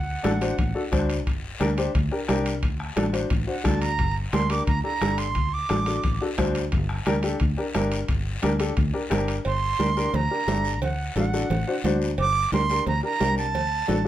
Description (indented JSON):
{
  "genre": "latin, cumbia",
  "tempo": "176 BPM",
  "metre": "4/4",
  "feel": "straight",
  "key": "G harmonic minor",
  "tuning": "A4 = 440 Hz",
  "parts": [
    { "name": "bright reedy silver concert flute", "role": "melody", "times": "0.0-1.0, 3.5-6.2, 9.5-14.1 s", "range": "F#5 to D6", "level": "-27 LUFS", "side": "right 5 dB", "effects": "none" },
    { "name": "fingered electric bass", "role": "bass", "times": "0.0-14.1 s", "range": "G1 to D2", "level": "-27 LUFS", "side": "equal", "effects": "none" },
    { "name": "warm upright piano", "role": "accompaniment", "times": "0.2-14.1 s", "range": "D4 to C5", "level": "-27 LUFS", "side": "left 3 dB", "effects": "none" },
    { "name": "bombo", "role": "percussion", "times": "0.2-9.3 s", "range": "none", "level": "-28 LUFS", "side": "left 1 dB", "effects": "none" },
    { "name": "congas", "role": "percussion", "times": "0.2-14.1 s", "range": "none", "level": "-29 LUFS", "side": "right 2 dB", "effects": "none" },
    { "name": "guiro", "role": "percussion", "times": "0.2-14.1 s", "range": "none", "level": "-39 LUFS", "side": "left 4 dB", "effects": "none" },
    { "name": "timbales and cowbell", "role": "percussion", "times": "0.2-14.1 s", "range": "none", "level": "-36 LUFS", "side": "right 4 dB", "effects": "none" }
  ],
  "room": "light reverb",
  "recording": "none",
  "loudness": "-22 LUFS",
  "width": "side -12 dB against mid",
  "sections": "0.0-9.5 A section; 9.5-14.1 A section",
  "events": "none",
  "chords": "0.0 D7; 1.3 Gm; 2.6 D7; 4.0 Gm; 5.4 D7; 6.7 Gm; 10.8 D7; 12.2 Gm; 13.5 D5",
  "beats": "0.24 0.58 0.92 | 1.26 1.61 1.95 2.29 | 2.63 2.97 3.31 3.65 | 4.00 4.34 4.68 5.02 | 5.36 5.70 6.04 6.38 | 6.73 7.07 7.41 7.75 | 8.09 8.43 8.77 9.12 | 9.46 9.80 10.14 10.48 | 10.82 11.16 11.50 11.84 | 12.18 12.53 12.87 13.21 | 13.55 13.89"
}